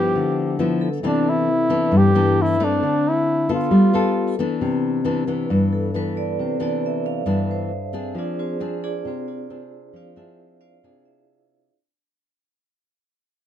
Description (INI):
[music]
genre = bossa nova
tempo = 135 BPM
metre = 4/4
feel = straight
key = C major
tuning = A4 = 439 Hz
[part]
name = mellow flugelhorn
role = melody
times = 0.0-4.4 s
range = D4 to G4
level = -20 LUFS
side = equal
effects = none
[part]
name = nylon-string guitar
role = accompaniment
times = 0.0-11.7 s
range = G2 to A4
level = -20 LUFS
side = left 2 dB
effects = none
[part]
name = vibraphone with medium hard mallets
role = accompaniment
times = 0.8-2.8, 5.7-11.7 s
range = C4 to F5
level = -29 LUFS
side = right 6 dB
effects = none
[sound]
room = light reverb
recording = dark, warm production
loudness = -18 LUFS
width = side -10 dB against mid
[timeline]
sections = 0.0-4.6 A section; 4.6-11.7 B section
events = fade-out 4.6-11.7; vibraphone solo 4.6-11.7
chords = 0.0 G13; 1.0 Cmaj9; 2.8 Dm7; 3.7 G9; 4.6 Cmaj9; 8.2 Fm6